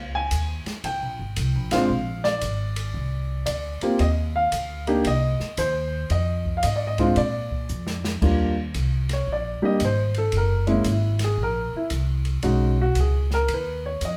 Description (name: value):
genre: jazz piano trio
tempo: 114 BPM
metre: 4/4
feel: swing 66% on 8ths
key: Eb major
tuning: A4 = 440 Hz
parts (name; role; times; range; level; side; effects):
- upright bass; bass; 0.0-14.2 s; Gb1 to Bb2; -27 LUFS; equal; none
- warm baby grand piano; melody; 0.1-14.2 s; G3 to Ab5; -27 LUFS; equal; none
- open jazz drum kit; drums; 0.3-14.2 s; crash cymbal, hi-hat, kick drum, ride cymbal, snare drum; -36 LUFS; equal; none
room: moderate large studio reverb, RT60 1.0 s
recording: heard from further back in the room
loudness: -24 LUFS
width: mono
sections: 0.0-8.2 A section; 8.2-14.2 B section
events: band accent 1.6; drum fill 7.7-8.2; grand piano solo 8.2-14.2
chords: 0.0 Db5; 1.9 Bb7; 4.0 Ebsus2; 5.1 Cm; 6.1 Fm7; 7.2 Bb; 8.2 Ebmaj7; 10.3 Gb7; 12.4 B6